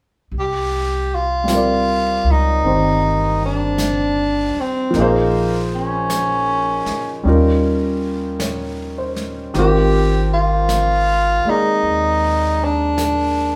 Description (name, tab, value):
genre	jazz ballad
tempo	52 BPM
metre	4/4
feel	swing 66% on 8ths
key	C minor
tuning	A4 = 439 Hz
part	upright bass	bass	0.3-13.6 s	G1 to Eb2	-24 LUFS	equal	none
part	jazz brush drum kit	drums	0.3-13.6 s	brushed snare drum, hi-hat, snare drum	-33 LUFS	equal	none
part	mellow tenor saxophone	melody	0.4-13.6 s	Bb3 to G4	-20 LUFS	equal	none
part	warm concert grand piano	accompaniment	1.4-13.6 s	Eb3 to D5	-22 LUFS	equal	none
room	moderate large studio reverb, RT60 0.8 s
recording	band playing live in one room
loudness	-18 LUFS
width	mono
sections	0.3-13.6 A section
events	none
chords	0.3 Cm9; 4.9 Bbm11; 7.2 Eb7; 9.5 Abmaj9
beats	| 0.32 1.47 2.63 3.79 | 4.94 6.09 7.25 8.40 | 9.55 10.69 11.84 12.98